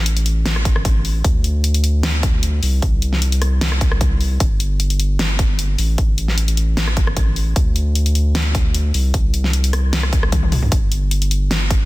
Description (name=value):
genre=future bass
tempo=152 BPM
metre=4/4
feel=half-time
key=unclear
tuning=A4 = 440 Hz
part: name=saturated sub bass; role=bass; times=0.0-11.9 s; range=G1 to D2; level=-17 LUFS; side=equal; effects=sidechain pumping
part: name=big-room dance drum kit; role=drums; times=0.1-11.8 s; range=hi-hat, rim click, snare drum, toms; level=-22 LUFS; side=left 1 dB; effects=none
part: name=electronic kick drum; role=drums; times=0.7-11.8 s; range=none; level=-17 LUFS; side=equal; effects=none
room=digital ambience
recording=dense, heavily limited modern master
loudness=-15 LUFS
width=side -19 dB against mid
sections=0.0-11.9 A section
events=drum fill 10.3-10.7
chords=none